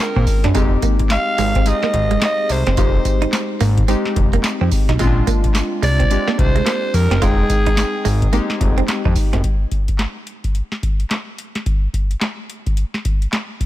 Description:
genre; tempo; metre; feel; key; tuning
R&B, new jack swing; 108 BPM; 4/4; swing 61% on 16ths; F dorian; A4 = 438 Hz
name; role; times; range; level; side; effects
raspy alto saxophone; melody; 0.0-8.3 s; Ab4 to F5; -22 LUFS; equal; ping-pong delay
warm analog keys; accompaniment; 0.0-9.5 s; Ab3 to G5; -23 LUFS; left 2 dB; chorus
direct-recorded clean electric guitar; riff; 0.2-9.4 s; Ab3 to F4; -25 LUFS; right 9 dB; lush chorus
fat analog bass; bass; 0.2-9.4 s; F1 to Bb2; -18 LUFS; equal; none
booming analog drum machine; drums; 0.2-13.7 s; handclaps, hi-hat, kick drum, snare drum, tambourine; -18 LUFS; equal; none
room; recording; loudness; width
little or no reverb; none; -15 LUFS; side -14 dB against mid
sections
0.0-9.4 A section; 9.4-13.7 B section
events
none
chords
0.0 Bb9; 0.6 Fm9; 5.0 Bb9; 7.2 Fm7; 9.4 N.C.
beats
| 0.55 1.10 1.66 2.22 | 2.77 3.33 3.88 4.44 | 4.99 5.55 6.11 6.66 | 7.22 7.77 8.33 8.88 | 9.44 9.99 10.55 11.11 | 11.66 12.22 12.77 13.33

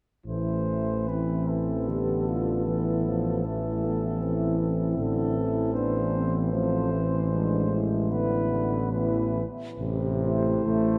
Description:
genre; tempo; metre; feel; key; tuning
classical, hymn-like piece for brass band; 66-80 BPM; 3/4; rubato; A minor; A4 = 441 Hz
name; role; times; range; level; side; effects
warm flugelhorn; melody; 0.3-11.0 s; A4 to C5; -36 LUFS; equal; none
mellow French horn section; second line; 0.3-11.0 s; C4 to G4; -35 LUFS; equal; none
clear trombone; accompaniment; 0.3-11.0 s; C3 to A3; -34 LUFS; equal; none
warm euphonium; accompaniment; 0.3-11.0 s; G#3 to C4; -34 LUFS; equal; none
warm tuba; bass; 0.3-11.0 s; A1; -31 LUFS; equal; none
room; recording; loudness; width
wet cathedral reverb, RT60 6.7 s; dark, warm production; -27 LUFS; mono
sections
0.3-9.8 A section; 9.8-11.0 B section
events
none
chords
0.3 Am; 7.3 E7/A; 9.8 Am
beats
| 0.27 1.09 1.89 | 2.67 3.46 4.22 | 4.98 5.75 6.53 | 7.31 8.11 8.94 | 9.80 10.67

